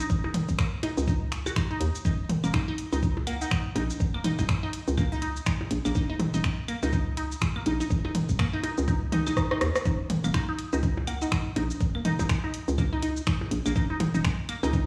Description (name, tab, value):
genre	minimal techno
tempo	123 BPM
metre	4/4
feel	swing 59% on 16ths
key	Eb minor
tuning	A4 = 441 Hz
part	resonant blip pluck	riff	0.0-14.8 s	Bb3 to Gb4	-35 LUFS	equal	phaser, sidechain pumping, tape echo
part	hollow knocking FM bass	bass	0.0-14.9 s	Eb1 to Eb2	-31 LUFS	equal	sidechain pumping
part	garage drum kit	drums	0.0-14.8 s	finger snaps, hi-hat, rim click, shaker	-36 LUFS	equal	overdrive, studio reverb
part	electronic kick drum	drums	0.1-14.8 s	none	-29 LUFS	equal	studio reverb
part	electronic percussion blips, toms and claves	percussion	0.2-14.7 s	none	-34 LUFS	equal	studio reverb, tape echo
part	soft synth bell	melody	3.3-3.5, 11.1-11.3 s	Gb5	-44 LUFS	equal	chorus, phaser, tape echo
room	moderate studio ambience, RT60 0.5 s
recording	played on a big sound system in a bare room, stone room reverb, small room ambience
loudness	-28 LUFS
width	mono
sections	0.0-14.9 A section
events	drum fill 9.4-9.9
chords	0.0 Eb7(no3)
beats	| 0.10 0.59 1.07 1.56 | 2.05 2.54 3.03 3.51 | 4.00 4.49 4.98 5.46 | 5.95 6.44 6.93 7.42 | 7.90 8.39 8.88 9.37 | 9.86 10.34 10.83 11.32 | 11.81 12.29 12.78 13.27 | 13.76 14.24 14.73